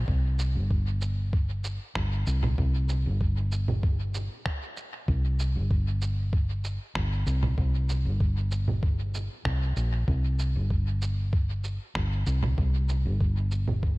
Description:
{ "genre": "ambient dub", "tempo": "96 BPM", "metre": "4/4", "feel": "straight", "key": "unclear", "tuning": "A4 = 440 Hz", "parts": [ { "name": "hollow-body short-scale fingered electric bass", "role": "bass", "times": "0.0-14.0 s", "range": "G1 to C2", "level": "-26 LUFS", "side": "equal", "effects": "none" }, { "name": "electronic kick drum", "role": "drums", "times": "0.1-14.0 s", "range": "none", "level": "-27 LUFS", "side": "equal", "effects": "none" }, { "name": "electronic shaker, finger snaps and congas", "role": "drums", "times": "0.4-13.8 s", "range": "none", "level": "-36 LUFS", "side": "right 2 dB", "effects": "dub echo" } ], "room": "little or no reverb", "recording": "none", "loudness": "-25 LUFS", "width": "side -22 dB against mid", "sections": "0.1-14.0 A section", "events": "none", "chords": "none" }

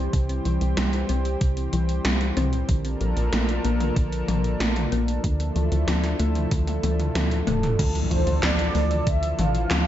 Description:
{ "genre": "synthwave", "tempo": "94 BPM", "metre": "4/4", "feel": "straight", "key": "D minor", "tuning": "A4 = 445 Hz", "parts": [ { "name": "lush unison pad", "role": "sustained chords", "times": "0.0-9.9 s", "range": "E3 to C5", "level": "-30 LUFS", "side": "equal", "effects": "chorus, sidechain pumping" }, { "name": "tight sequencer bass", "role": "bass", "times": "0.0-9.9 s", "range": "D1 to D2", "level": "-25 LUFS", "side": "equal", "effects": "none" }, { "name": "thumb-piano-like synth pluck", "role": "arpeggios", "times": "0.1-9.9 s", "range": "C3 to C4", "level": "-29 LUFS", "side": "left 2 dB", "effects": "chorus, tape echo" }, { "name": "80s electronic pad drums", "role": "drums", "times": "0.1-9.8 s", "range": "crash cymbal, handclaps, hi-hat, snare drum, toms", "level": "-28 LUFS", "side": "equal", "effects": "gated reverb on snare and toms, gated reverb" }, { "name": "electronic kick drum", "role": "drums", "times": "0.1-9.2 s", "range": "none", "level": "-24 LUFS", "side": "equal", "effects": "none" }, { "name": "mellow synth brass", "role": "melody", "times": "7.5-9.9 s", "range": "A4 to F5", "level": "-28 LUFS", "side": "right 2 dB", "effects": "chorus" }, { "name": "impact", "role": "sound effects", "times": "7.8-9.9 s", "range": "none", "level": "-32 LUFS", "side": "equal", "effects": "none" } ], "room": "light reverb", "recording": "nothing above 7.7 kHz", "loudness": "-21 LUFS", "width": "side -12 dB against mid", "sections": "0.0-7.8 A section; 7.8-9.9 B section", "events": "drum fill 6.5-7.8; impact 7.8-9.9", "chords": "0.0 C; 2.7 Bbmaj7; 5.2 Dmadd9" }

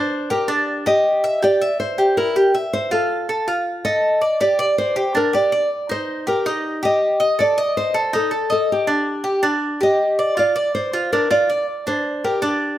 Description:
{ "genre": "latin", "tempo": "161 BPM", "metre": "4/4", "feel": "straight", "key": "unclear", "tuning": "A4 = 440 Hz", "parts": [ { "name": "nylon-string guitar", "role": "melody", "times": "0.0-12.8 s", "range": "G4 to Eb5", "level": "-19 LUFS", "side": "equal", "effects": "none" }, { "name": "Cuban tres", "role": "arpeggios", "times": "0.0-12.8 s", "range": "D4 to E5", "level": "-20 LUFS", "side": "equal", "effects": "none" } ], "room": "moderate large studio reverb, RT60 1.1 s", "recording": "none", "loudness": "-17 LUFS", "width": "side -13 dB against mid", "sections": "0.0-12.8 A section", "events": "none", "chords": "0.0 G5; 1.4 C7; 2.9 F; 4.4 G5; 5.9 Cm; 7.4 Ebmaj7(b5, no3); 8.9 G5; 10.4 Dm7; 11.9 G5" }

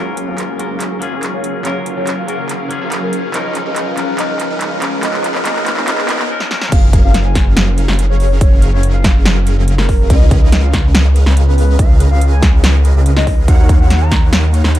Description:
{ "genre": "future bass", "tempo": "142 BPM", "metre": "4/4", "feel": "half-time", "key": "unclear", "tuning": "A4 = 438 Hz", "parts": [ { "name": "soft octave-layered synth lead", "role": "melody", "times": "0.0-14.2 s", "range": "A#4 to A#5", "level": "-23 LUFS", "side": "left 1 dB", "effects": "chorus, phaser, sidechain pumping, tape echo" }, { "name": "twangy electric guitar", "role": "accompaniment", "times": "0.0-6.7 s", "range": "E#3 to A#4", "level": "-23 LUFS", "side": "left 3 dB", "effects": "sidechain pumping, tape echo" }, { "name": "shimmering ambient pad", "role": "sustained chords", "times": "0.0-6.3 s", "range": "C#3 to E#4", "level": "-32 LUFS", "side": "right 1 dB", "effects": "none" }, { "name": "supersaw chords", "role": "riff", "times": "0.0-14.8 s", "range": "F#3 to F#5", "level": "-22 LUFS", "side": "right 1 dB", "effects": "sidechain pumping, low-pass filter" }, { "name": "wide detuned saw bass", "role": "bass", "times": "0.0-14.8 s", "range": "F#1 to D#2", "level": "-14 LUFS", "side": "equal", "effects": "chorus, tube saturation, sidechain pumping, high-pass filter" }, { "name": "riser", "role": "sound effects", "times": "1.8-6.3 s", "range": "none", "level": "-28 LUFS", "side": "equal", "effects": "none" }, { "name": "big-room dance drum kit", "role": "drums", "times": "0.2-14.8 s", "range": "crash cymbal, handclaps, hi-hat, snare drum", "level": "-18 LUFS", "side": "equal", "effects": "none" }, { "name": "electronic kick drum", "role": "drums", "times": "6.7-14.2 s", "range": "none", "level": "-11 LUFS", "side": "equal", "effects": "none" } ], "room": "little or no reverb", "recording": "dark, warm production, high-pass filter", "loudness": "-11 LUFS", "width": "side -14 dB against mid", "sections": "0.0-6.7 A section; 6.7-14.8 B section", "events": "build-up 0.0-6.7; drum fill 0.0-6.3, 6.4-6.7; filter sweep on supersaw synth 0.0-6.7; filter sweep on soft synth lead 0.0-6.7; riser 1.8-6.3; break 6.3-6.7; drop 6.7-14.8", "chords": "0.0 F#maj7; 3.3 C#13; 6.7 F#maj7; 10.1 C#13; 13.5 D#m7" }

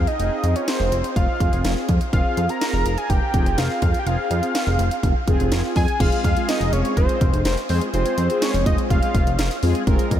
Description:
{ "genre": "synth-pop", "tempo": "124 BPM", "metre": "4/4", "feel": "straight", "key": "F minor", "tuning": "A4 = 440 Hz", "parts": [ { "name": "fat analog lead", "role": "melody", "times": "0.0-9.6 s", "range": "C5 to Bb5", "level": "-24 LUFS", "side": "equal", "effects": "chorus, ping-pong delay" }, { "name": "analog synth brass", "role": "accompaniment", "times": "0.0-10.2 s", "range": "Ab3 to Bb4", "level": "-26 LUFS", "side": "equal", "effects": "chorus" }, { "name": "chorused synth bass", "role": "bass", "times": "0.0-10.2 s", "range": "F1 to F2", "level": "-22 LUFS", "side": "equal", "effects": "none" }, { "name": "house drum kit", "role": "drums", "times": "0.1-10.2 s", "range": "crash cymbal, hi-hat, kick drum, snare drum", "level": "-22 LUFS", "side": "equal", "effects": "none" } ], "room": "moderate huge ambient reverb, RT60 7.9 s", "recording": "dreamy mix soaked in reverb", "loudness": "-18 LUFS", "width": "side -10 dB against mid", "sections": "0.0-6.0 A section; 6.0-10.2 B section", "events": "none", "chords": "0.0 Fm" }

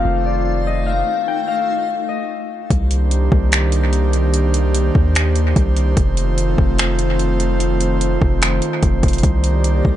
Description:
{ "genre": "hip hop, atmospheric cloud-rap", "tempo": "147 BPM", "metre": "4/4", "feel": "half-time", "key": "C dorian", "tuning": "A4 = 440 Hz", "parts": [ { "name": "concert harp", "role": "melody", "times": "0.0-3.9 s", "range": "D5 to G5", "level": "-21 LUFS", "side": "left 7 dB", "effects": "low-pass filter, analog delay" }, { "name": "airy breathy pad", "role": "sustained chords", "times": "0.0-10.0 s", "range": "Eb3 to D5", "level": "-21 LUFS", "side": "right 1 dB", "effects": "chorus, low-pass filter" }, { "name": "long sustained 808-style bass", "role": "bass", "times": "0.0-10.0 s", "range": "F1 to Eb2", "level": "-17 LUFS", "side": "equal", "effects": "none" }, { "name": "backwards swelling texture", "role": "texture", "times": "0.0-2.7, 9.6-10.0 s", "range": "A3 to F4", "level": "-30 LUFS", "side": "left 2 dB", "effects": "built-in reverb" }, { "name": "smooth R&B drum kit", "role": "drums", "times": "2.7-9.9 s", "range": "finger snaps, hi-hat, kick drum", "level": "-18 LUFS", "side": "equal", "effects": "overdrive, analog delay" } ], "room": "little or no reverb", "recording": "echo-heavy mix, nothing above 10.6 kHz", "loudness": "-15 LUFS", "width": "side -12 dB against mid", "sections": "0.0-2.7 A section; 2.7-10.0 B section", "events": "filter sweep 0.0-2.7; stop 1.1-2.7", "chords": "0.0 F7; 2.7 Cm9; 6.0 F7; 9.2 Cm9" }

